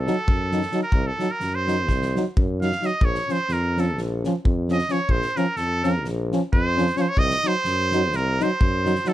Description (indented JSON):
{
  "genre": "balkan folk, Balkan brass band",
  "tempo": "259 BPM (eighths)",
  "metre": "9/8",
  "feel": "straight",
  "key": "unclear",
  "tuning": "A4 = 439 Hz",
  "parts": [
    { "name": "cornet with straight mute", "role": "melody", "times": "0.0-9.1 s", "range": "A4 to F5", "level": "-24 LUFS", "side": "right 2 dB", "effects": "none" },
    { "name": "warm tuba", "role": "bass", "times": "0.0-9.0 s", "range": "Bb1 to Gb2", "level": "-26 LUFS", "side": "equal", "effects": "none" },
    { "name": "warm euphonium", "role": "accompaniment", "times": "0.1-9.1 s", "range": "Db4 to Eb4", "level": "-28 LUFS", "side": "left 8 dB", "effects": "none" },
    { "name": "warm euphonium", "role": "accompaniment", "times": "0.1-9.1 s", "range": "F3 to Gb3", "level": "-26 LUFS", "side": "right 4 dB", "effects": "none" },
    { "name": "loose indie drum kit", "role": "percussion", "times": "0.1-9.1 s", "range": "kick drum, snare drum", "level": "-25 LUFS", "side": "equal", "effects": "none" }
  ],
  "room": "little or no reverb",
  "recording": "dark, warm production",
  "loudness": "-20 LUFS",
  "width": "side -14 dB against mid",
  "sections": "0.0-9.1 A section",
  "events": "cornet solo 0.0-9.1",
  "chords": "0.0 Cdim; 3.0 Bbm; 7.2 Cdim"
}